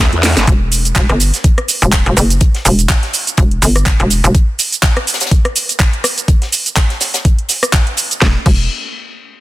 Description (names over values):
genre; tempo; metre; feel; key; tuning
bass house; 124 BPM; 4/4; swing 56% on 16ths; E minor; A4 = 438 Hz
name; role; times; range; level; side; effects
growl bass; bass; 0.0-0.5 s; G1 to E2; -13 LUFS; equal; chorus, tube saturation, sidechain pumping
garage drum kit; drums; 0.0-8.6 s; crash cymbal, handclaps, hi-hat, rim click, shaker, snare drum; -15 LUFS; right 1 dB; none
deep reggae drum kit; drums; 0.2-8.2 s; hi-hat, snare drum; -24 LUFS; left 5 dB; sidechain pumping on hats, high-pass filter on hats, high-pass filter on snare, high-pass filter on room
hollow knocking FM bass; bass; 0.5-4.3, 8.2-8.7 s; E1 to G1; -12 LUFS; equal; sidechain pumping
electronic kick drum; drums; 0.5-8.6 s; none; -12 LUFS; equal; none
room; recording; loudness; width
little or no reverb; dense, heavily limited modern master; -10 LUFS; side -17 dB against mid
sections
0.5-8.2 A section; 8.2-9.4 B section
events
drum fill 0.0-0.5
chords
0.5 Em; 8.2 N.C.